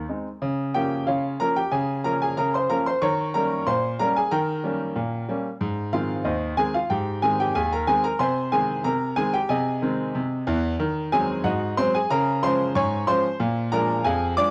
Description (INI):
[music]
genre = ragtime piano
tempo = 92 BPM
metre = 2/4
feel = straight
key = Ab major, Db major from 10.8 s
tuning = A4 = 437 Hz
[part]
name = clear concert grand piano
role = solo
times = 0.0-14.5 s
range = Eb2 to D6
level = -24 LUFS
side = equal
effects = none
[sound]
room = moderate spring reverb, RT60 1.3 s, small room ambience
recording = home recording on cassette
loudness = -24 LUFS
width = mono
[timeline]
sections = 0.4-14.5 A section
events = none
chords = 0.4 Bbm/Db; 3.0 Eb7; 5.6 Ab; 8.2 Ab/C; 10.8 Ab7/Eb; 12.1 Db; 13.4 Bb7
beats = | 0.41 1.06 | 1.72 2.37 | 3.02 3.66 | 4.31 4.96 | 5.61 6.26 | 6.91 7.55 | 8.20 8.85 | 9.50 10.15 | 10.80 11.45 | 12.10 12.75 | 13.40 14.05